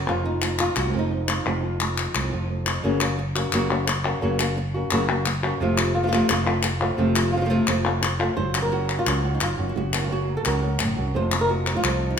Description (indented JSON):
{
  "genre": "flamenco",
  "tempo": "174 BPM",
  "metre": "4/4",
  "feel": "straight",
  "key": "unclear",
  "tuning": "A4 = 445 Hz",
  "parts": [
    { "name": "flamenco guitar", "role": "melody", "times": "0.0-12.2 s", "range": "F2 to C5", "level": "-25 LUFS", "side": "equal", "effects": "none" },
    { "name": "flamenco guitar", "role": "stabs", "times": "0.0-2.8, 5.6-12.2 s", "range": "C3 to Gb4", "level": "-30 LUFS", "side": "right 5 dB", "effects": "none" },
    { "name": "fingered electric bass", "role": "bass", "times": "0.0-12.1 s", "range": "F1 to Db2", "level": "-26 LUFS", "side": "equal", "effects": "none" },
    { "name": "palmas hand claps", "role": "percussion", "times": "0.1-12.0 s", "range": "none", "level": "-26 LUFS", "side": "left 4 dB", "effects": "none" }
  ],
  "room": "moderate recital hall reverb, RT60 1.5 s",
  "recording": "minimal, uncompressed stereo recording",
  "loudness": "-21 LUFS",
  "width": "side -7 dB against mid",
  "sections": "0.0-2.8 A section; 2.8-8.4 B section; 8.4-12.2 C section",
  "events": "none",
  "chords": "0.1 F; 2.8 Gb; 5.6 F; 8.4 Gb; 11.1 F"
}